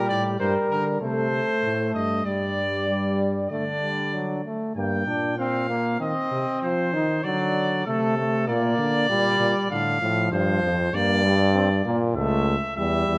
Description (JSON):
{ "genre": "classical, imitative canzona for brass ensemble", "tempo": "97 BPM", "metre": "4/4", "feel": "straight", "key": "G minor", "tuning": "A4 = 441 Hz", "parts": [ { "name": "clear trumpet", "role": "melody", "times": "0.0-13.2 s", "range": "A4 to G5", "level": "-29 LUFS", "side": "equal", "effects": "none" }, { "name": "mellow flugelhorn", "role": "second line", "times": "0.0-4.4 s", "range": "D4 to D5", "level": "-31 LUFS", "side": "equal", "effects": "none" }, { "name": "clear trombone", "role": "accompaniment", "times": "0.0-13.2 s", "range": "D3 to Eb4", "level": "-29 LUFS", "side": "equal", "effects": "none" }, { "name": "mellow bass trombone", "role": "bass", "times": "0.0-13.2 s", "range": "C#2 to F3", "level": "-29 LUFS", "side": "equal", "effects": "none" } ], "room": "wet recital hall reverb, RT60 1.6 s", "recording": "none", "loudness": "-24 LUFS", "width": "mono", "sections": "0.0-4.8 A section; 4.8-13.2 B section", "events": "none", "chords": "0.0 Gm; 1.0 Adim/C; 2.3 Dsus4/G; 3.5 D; 4.8 Gm; 6.0 Cm; 7.2 D; 8.5 Gm/Bb; 9.7 Dm/A; 10.9 Gm; 12.2 A/C#", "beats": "0.40 1.01 1.63 | 2.26 2.88 3.50 4.13 | 4.76 5.38 6.00 6.62 | 7.24 7.86 8.47 9.09 | 9.70 10.32 10.94 11.55 | 12.16 12.77" }